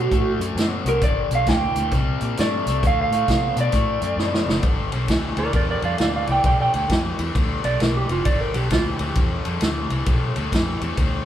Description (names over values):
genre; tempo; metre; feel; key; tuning
electric blues shuffle; 133 BPM; 4/4; swing 64% on 8ths; G mixolydian; A4 = 441 Hz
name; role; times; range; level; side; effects
electric guitar through a small old amp; melody; 0.0-4.6 s; F#4 to G5; -23 LUFS; right 2 dB; none
raw garage guitar; riff; 0.0-11.2 s; G2 to B3; -27 LUFS; left 3 dB; overdrive, spring reverb
vintage muted fingered electric bass; bass; 0.0-11.2 s; F1 to C3; -25 LUFS; equal; none
vintage drum kit; drums; 0.1-11.1 s; hi-hat, kick drum, ride cymbal, snare drum; -22 LUFS; equal; none
clean lap steel guitar; second line; 5.4-9.3 s; F4 to G5; -23 LUFS; right 3 dB; none
room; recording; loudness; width
moderate stone room reverb, RT60 1.1 s; band playing live in one room; -19 LUFS; side -11 dB against mid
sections
0.0-4.6 A section; 4.6-11.2 A section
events
clean electric guitar solo 0.0-4.6; drum fill 4.2-4.6; electric slide guitar solo 4.6-11.2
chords
0.0 D7; 1.0 G; 1.9 C5; 2.8 D7; 4.6 G7